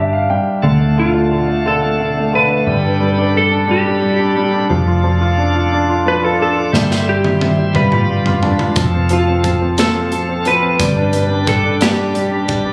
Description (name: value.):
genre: six-eight pop ballad.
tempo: 59 BPM (dotted quarters).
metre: 6/8.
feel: straight.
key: unclear.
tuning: A4 = 440 Hz.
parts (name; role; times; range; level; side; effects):
clean lap steel guitar; melody; 0.0-12.5 s; F4 to B4; -20 LUFS; equal; tape echo.
warm baby grand piano; accompaniment; 0.0-12.7 s; D3 to G5; -19 LUFS; equal; none.
vintage muted fingered electric bass; bass; 0.0-12.7 s; F1 to D2; -21 LUFS; equal; none.
bright tonewheel organ; sustained chords; 0.6-12.7 s; C4 to D6; -27 LUFS; equal; slow rotary speaker.
modern studio drum kit; drums; 6.7-12.6 s; hi-hat, kick drum, snare drum, toms; -21 LUFS; equal; none.
room: light reverb, small room ambience.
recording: recorded on a phone in the room, club reverb.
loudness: -15 LUFS.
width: mono.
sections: 0.6-12.7 A section.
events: grand piano fill 0.0-0.6; drum fill 6.7-8.8.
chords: 0.0 G5; 0.6 Dm; 2.7 Gadd9; 4.7 Dm/F; 6.7 C/G; 7.7 G7; 8.8 F; 10.8 G.